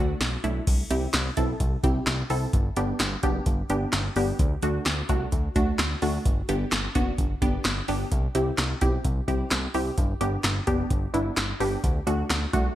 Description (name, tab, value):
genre	synth-pop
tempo	129 BPM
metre	4/4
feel	straight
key	G major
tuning	A4 = 439 Hz
part	wide unison pluck	accompaniment	0.0-12.7 s	A3 to A4	-28 LUFS	equal	none
part	fat analog bass	bass	0.0-12.7 s	F#1 to D2	-29 LUFS	equal	none
part	electro analog drum machine	drums	0.2-12.6 s	crash cymbal, handclaps, hi-hat, kick drum, snare drum	-26 LUFS	equal	gated reverb
room	light reverb, digital ambience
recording	bright 1980s-style digital production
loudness	-23 LUFS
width	side -13 dB against mid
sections	0.7-12.8 A section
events	none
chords	0.0 D; 0.7 C; 2.5 G; 4.4 D; 6.3 G; 8.1 C; 10.0 G; 11.8 D